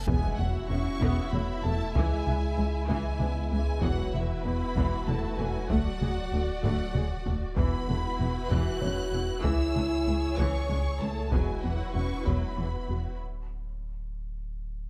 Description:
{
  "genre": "cinematic, hybrid orchestral and electronic film score",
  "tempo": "64 BPM (dotted quarters)",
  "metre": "6/8",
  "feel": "straight",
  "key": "unclear",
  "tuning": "A4 = 443 Hz",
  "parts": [
    { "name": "warm symphonic violin section", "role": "melody", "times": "0.0-13.2 s", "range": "E5 to F#6", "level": "-41 LUFS", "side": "equal", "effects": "none" },
    { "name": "warm symphonic viola section", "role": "accompaniment", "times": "0.0-13.2 s", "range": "D3 to G#4", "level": "-40 LUFS", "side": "equal", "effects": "none" },
    { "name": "dark French horn section", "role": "sustained chords", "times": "0.0-13.2 s", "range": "E3 to C#5", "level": "-38 LUFS", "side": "equal", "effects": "none" },
    { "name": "pure sine sub bass", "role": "bass", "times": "0.0-14.9 s", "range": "D1 to C#2", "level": "-37 LUFS", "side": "equal", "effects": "none" },
    { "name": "reverse cymbal and impact", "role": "sound effects", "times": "0.0-1.9 s", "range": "none", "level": "-38 LUFS", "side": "equal", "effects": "none" },
    { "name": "warm concert grand piano", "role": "texture", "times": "0.0-13.2 s", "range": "A3 to E5", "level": "-46 LUFS", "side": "equal", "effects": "digital delay" },
    { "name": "dark symphonic violin section", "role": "second line", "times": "0.1-13.2 s", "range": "E4 to E5", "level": "-42 LUFS", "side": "equal", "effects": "none" },
    { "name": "rubbery square bass", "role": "riff", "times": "0.1-13.1 s", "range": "C#2 to E2", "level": "-34 LUFS", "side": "equal", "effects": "none" },
    { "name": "dark studio double bass section", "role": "bass", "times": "0.1-13.0 s", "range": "E1 to D2", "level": "-39 LUFS", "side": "equal", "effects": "none" },
    { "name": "warm symphonic cello section", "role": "bass", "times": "0.1-13.0 s", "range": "C#2 to E2", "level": "-38 LUFS", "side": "equal", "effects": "none" },
    { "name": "taiko ensemble", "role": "drums", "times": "0.1-12.8 s", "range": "none", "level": "-35 LUFS", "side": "equal", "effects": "none" }
  ],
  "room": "light reverb",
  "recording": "close, detailed microphones",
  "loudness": "-29 LUFS",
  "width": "mono",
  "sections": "0.1-14.9 A section",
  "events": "impact 0.1-1.9; drum fill 6.6-7.6; break 13.2-14.9",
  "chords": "0.1 Esus2; 1.9 C#m; 3.8 Esus2; 5.7 D; 7.6 Esus2; 9.4 C#m; 11.3 Esus2; 13.2 N.C.",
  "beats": "| 0.07 1.01 | 1.95 2.88 | 3.82 4.76 | 5.70 6.63 | 7.57 8.51 | 9.45 10.38 | 11.32 12.26 | 13.20 14.13"
}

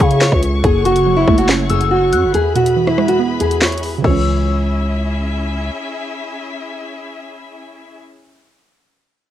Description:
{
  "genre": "hip hop, drill",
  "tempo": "141 BPM",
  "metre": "4/4",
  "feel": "half-time",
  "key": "C# minor",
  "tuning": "A4 = 439 Hz",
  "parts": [
    { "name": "nylon-string guitar", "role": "melody", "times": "0.0-5.3 s", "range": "E4 to C#5", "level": "-16 LUFS", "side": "equal", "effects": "cassette tape, tape echo" },
    { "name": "soft round pluck", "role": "accompaniment", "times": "0.0-8.0 s", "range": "E2 to C#5", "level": "-20 LUFS", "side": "right 5 dB", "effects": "chorus, cassette tape" },
    { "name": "warm studio string section", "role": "sustained chords", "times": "0.0-8.0 s", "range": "C#4 to C#6", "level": "-26 LUFS", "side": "left 3 dB", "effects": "cassette tape" },
    { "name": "growling 808-style bass", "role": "bass", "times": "0.0-5.7 s", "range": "F#1 to C#3", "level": "-17 LUFS", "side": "equal", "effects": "none" },
    { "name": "drill drum kit", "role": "drums", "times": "0.0-4.1 s", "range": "crash cymbal, handclaps, hi-hat, kick drum, rim click, snare drum", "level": "-17 LUFS", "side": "equal", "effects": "overdrive, cassette tape" },
    { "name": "soft synth bell", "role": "second line", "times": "0.9-5.3 s", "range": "C#6 to F#6", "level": "-25 LUFS", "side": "left 11 dB", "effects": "chorus, cassette tape, tape echo" }
  ],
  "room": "digital ambience",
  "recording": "home recording on cassette",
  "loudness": "-13 LUFS",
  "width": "side -11 dB against mid",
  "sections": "0.0-4.0 A section; 4.0-7.4 B section",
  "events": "break 2.3-4.0",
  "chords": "0.0 C#m; 0.6 F#m; 2.3 E; 4.0 C#m",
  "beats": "0.21 | 0.64 1.06 1.49 1.92 | 2.34 2.77 3.19 3.62 | 4.04 4.47 4.89 5.32 | 5.75 6.17 6.60 7.02"
}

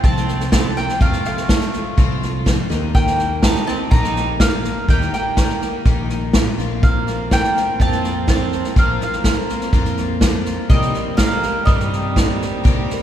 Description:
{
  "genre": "indie folk with a building arrangement",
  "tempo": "124 BPM",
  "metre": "4/4",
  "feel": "straight",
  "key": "F mixolydian",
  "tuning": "A4 = 439 Hz",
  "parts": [
    { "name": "mandolin", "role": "melody", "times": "0.0-13.0 s", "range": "Eb5 to Bb5", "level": "-24 LUFS", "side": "right 1 dB", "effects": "none" },
    { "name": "warm fiddle", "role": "second line", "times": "0.0-13.0 s", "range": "G3 to Eb4", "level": "-27 LUFS", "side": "right 4 dB", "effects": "none" },
    { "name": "picked twelve-string acoustic guitar", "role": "accompaniment", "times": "0.0-13.0 s", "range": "F2 to G4", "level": "-26 LUFS", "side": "left 5 dB", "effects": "none" },
    { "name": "mellow fretless electric bass", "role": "bass", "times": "0.0-12.9 s", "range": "Bb1 to G2", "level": "-25 LUFS", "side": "equal", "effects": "none" },
    { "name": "unplugged drum kit", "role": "drums", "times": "0.0-13.0 s", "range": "kick drum, snare drum", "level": "-17 LUFS", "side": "equal", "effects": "none" },
    { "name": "pedal harmonium", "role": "sustained chords", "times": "6.8-13.0 s", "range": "Bb3 to F5", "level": "-33 LUFS", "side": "right 2 dB", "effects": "none" }
  ],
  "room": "moderate cathedral reverb, RT60 4.3 s",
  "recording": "recorded in a church or concert hall",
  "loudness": "-15 LUFS",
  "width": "side -10 dB against mid",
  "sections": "0.0-13.0 A section",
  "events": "none",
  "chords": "0.0 F; 2.7 Eb; 6.6 Bbsus2; 10.7 Cm7",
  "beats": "0.04 0.53 | 1.01 1.50 1.98 2.46 | 2.95 3.43 3.92 4.40 | 4.89 5.37 5.86 6.34 | 6.83 7.31 7.80 8.28 | 8.77 9.25 9.74 10.22 | 10.71 11.19 11.68 12.16 | 12.65"
}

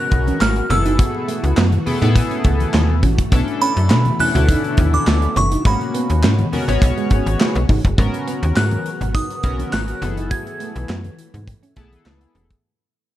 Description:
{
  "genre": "early-eighties boogie funk",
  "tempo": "103 BPM",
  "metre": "4/4",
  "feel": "straight",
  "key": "unclear",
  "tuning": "A4 = 440 Hz",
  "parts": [
    { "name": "delicate synth tine bell", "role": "melody", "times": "0.0-12.0 s", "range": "B5 to G#6", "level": "-23 LUFS", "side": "right 2 dB", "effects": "chorus, slapback echo" },
    { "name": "chorused polysynth", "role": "accompaniment", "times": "0.0-12.5 s", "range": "A#3 to C#5", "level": "-24 LUFS", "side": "left 2 dB", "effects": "none" },
    { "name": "soft string machine", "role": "sustained chords", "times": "0.0-12.6 s", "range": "B2 to A#4", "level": "-28 LUFS", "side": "equal", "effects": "ensemble chorus" },
    { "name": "electric guitar at the edge of break-up", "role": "riff", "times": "0.1-12.5 s", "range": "G#3 to F#4", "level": "-27 LUFS", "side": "right 6 dB", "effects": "ensemble chorus" },
    { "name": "slap-like FM bass", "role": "bass", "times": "0.1-12.6 s", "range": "E1 to B2", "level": "-18 LUFS", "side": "equal", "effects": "none" },
    { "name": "modern studio drum kit", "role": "drums", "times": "0.1-12.6 s", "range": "handclaps, hi-hat, kick drum, snare drum", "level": "-19 LUFS", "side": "equal", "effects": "gated reverb" },
    { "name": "congas", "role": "percussion", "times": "0.3-12.5 s", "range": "none", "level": "-28 LUFS", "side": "left 2 dB", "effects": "none" }
  ],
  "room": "studio reverb",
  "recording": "none",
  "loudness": "-15 LUFS",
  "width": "side -13 dB against mid",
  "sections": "0.0-8.0 A section; 8.0-12.6 B section",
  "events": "fade-out 8.0-12.6",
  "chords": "0.0 G#m11; 0.7 F#m11; 3.3 Bm11; 5.7 G#m11; 10.0 F#m11",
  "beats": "0.41 | 0.99 1.57 2.16 2.74 | 3.32 3.90 4.49 5.07 | 5.65 6.23 6.82 7.40 | 7.98 8.56 9.15 9.73 | 10.31 10.89 11.48 12.06"
}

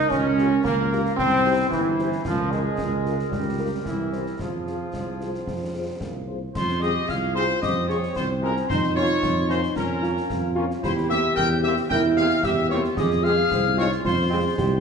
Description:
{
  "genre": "military-style march for wind band",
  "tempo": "112 BPM",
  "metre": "2/4",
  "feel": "straight",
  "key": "F minor",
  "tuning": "A4 = 438 Hz",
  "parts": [
    { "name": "dark trumpet section", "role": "melody", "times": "0.0-14.8 s", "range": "E4 to G5", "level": "-29 LUFS", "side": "equal", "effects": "none" },
    { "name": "warm woodwind section", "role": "second line", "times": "0.0-14.8 s", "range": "Db4 to C5", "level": "-32 LUFS", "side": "left 1 dB", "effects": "none" },
    { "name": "warm trombone section", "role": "sustained chords", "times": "0.0-14.4 s", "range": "E3 to Db4+20c", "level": "-26 LUFS", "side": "right 1 dB", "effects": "none" },
    { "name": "dark tuba", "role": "bass", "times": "0.0-14.8 s", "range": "G1 to F2", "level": "-27 LUFS", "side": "right 2 dB", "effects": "none" },
    { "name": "concert snare drum, concert bass drum and clash cymbals", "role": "drums", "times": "0.1-14.8 s", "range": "none", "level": "-33 LUFS", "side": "left 2 dB", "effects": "none" },
    { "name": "dark French horn section", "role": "accompaniment", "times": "0.4-14.4 s", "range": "Ab3 to C5", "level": "-32 LUFS", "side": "left 5 dB", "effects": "none" },
    { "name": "warm euphonium", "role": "second line", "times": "4.9-14.8 s", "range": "Ab3 to Ab4", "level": "-27 LUFS", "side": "right 3 dB", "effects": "none" },
    { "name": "hollow piccolo", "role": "second line", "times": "6.6-14.8 s", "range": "Bb5 to G6", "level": "-30 LUFS", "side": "left 4 dB", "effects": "none" }
  ],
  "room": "wet recital hall reverb, RT60 1.6 s",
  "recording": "nothing above 10.6 kHz",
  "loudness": "-21 LUFS",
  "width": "side -6 dB against mid",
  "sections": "0.0-6.5 A section; 6.5-14.8 B section",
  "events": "none",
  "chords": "0.1 Gm7b5/Db; 1.2 C; 2.3 Bbm/Db; 3.3 Gm7b5/Db; 3.9 C7; 4.4 Fm; 8.7 Bbm/F; 10.8 C7/E; 13.0 Fm",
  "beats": "| 0.11 0.65 | 1.18 1.72 | 2.26 2.79 | 3.33 3.87 | 4.40 4.94 | 5.47 6.01 | 6.55 7.08 | 7.62 8.15 | 8.69 9.23 | 9.76 10.30 | 10.83 11.37 | 11.90 12.44 | 12.98 13.51 | 14.05 14.58"
}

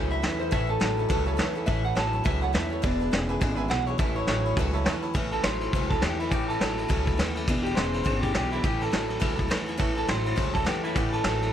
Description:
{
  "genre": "rockabilly",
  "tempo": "207 BPM",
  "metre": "4/4",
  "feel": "swing 60% on 8ths",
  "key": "A major",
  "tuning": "A4 = 440 Hz",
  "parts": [
    { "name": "electric guitar through a small old amp", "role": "melody", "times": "0.0-11.5 s", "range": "E4 to A5", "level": "-30 LUFS", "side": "equal", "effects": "plate reverb, tape echo" },
    { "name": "picked swing-style acoustic guitar", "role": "accompaniment", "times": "0.0-11.5 s", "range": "E2 to E4", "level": "-35 LUFS", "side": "left 5 dB", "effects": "plate reverb" },
    { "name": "electric guitar through a small old amp", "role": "riff", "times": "0.0-11.5 s", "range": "E2 to F#3", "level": "-32 LUFS", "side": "right 2 dB", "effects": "spring reverb" },
    { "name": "upright bass", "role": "bass", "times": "0.0-11.5 s", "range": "E1 to E2", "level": "-31 LUFS", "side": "equal", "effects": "none" },
    { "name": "vintage brush drum kit", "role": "drums", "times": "0.2-11.5 s", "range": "hi-hat, kick drum, ride cymbal, snare drum", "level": "-28 LUFS", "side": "equal", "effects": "none" },
    { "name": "clear upright piano", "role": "accompaniment", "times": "0.5-5.1, 9.8-11.5 s", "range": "B4 to B5", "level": "-38 LUFS", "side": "right 10 dB", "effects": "plate reverb" }
  ],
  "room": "light reverb",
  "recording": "none",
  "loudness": "-24 LUFS",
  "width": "side -10 dB against mid",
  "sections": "0.0-5.1 A section; 5.1-11.5 B section",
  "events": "clean electric guitar solo 0.0-5.1",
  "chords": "0.0 A; 2.8 E7; 4.0 A; 7.5 E7; 8.6 A",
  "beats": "0.23 | 0.52 0.81 1.10 1.39 | 1.68 1.97 2.25 2.54 | 2.83 3.12 3.41 3.70 | 3.99 4.28 4.57 4.86 | 5.15 5.44 5.73 6.02 | 6.31 6.60 6.89 7.18 | 7.47 7.76 8.05 8.34 | 8.63 8.92 9.21 9.50 | 9.79 10.08 10.37 10.66 | 10.96 11.24"
}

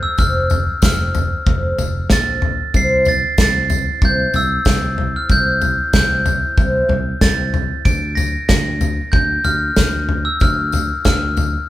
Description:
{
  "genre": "indie folk with a building arrangement",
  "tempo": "94 BPM",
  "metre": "4/4",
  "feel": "straight",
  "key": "unclear",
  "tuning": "A4 = 440 Hz",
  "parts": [
    { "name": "glockenspiel with brass mallets", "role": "melody", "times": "0.0-11.7 s", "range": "E6 to D7", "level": "-19 LUFS", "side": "equal", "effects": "none" },
    { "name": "picked twelve-string acoustic guitar", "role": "accompaniment", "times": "0.0-11.7 s", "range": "C3 to C5", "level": "-24 LUFS", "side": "equal", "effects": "none" },
    { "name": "fingered electric bass", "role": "bass", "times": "0.0-11.5 s", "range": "F1 to D2", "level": "-22 LUFS", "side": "equal", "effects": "none" },
    { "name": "natural country drum kit", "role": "drums", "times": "0.2-11.5 s", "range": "kick drum, snare drum, toms", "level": "-17 LUFS", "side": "equal", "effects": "none" },
    { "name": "tambourine", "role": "percussion", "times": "0.2-11.5 s", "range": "none", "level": "-33 LUFS", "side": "left 7 dB", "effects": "none" }
  ],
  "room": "moderate large studio reverb, RT60 1.3 s",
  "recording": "band playing live in one room",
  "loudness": "-14 LUFS",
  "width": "side -14 dB against mid",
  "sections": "0.0-11.7 A section",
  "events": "none",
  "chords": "0.0 F; 2.7 C; 7.9 Bb/D",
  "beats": "| 0.18 0.82 1.46 2.10 | 2.74 3.38 4.02 4.66 | 5.29 5.93 6.57 7.21 | 7.85 8.49 9.13 9.77 | 10.41 11.05"
}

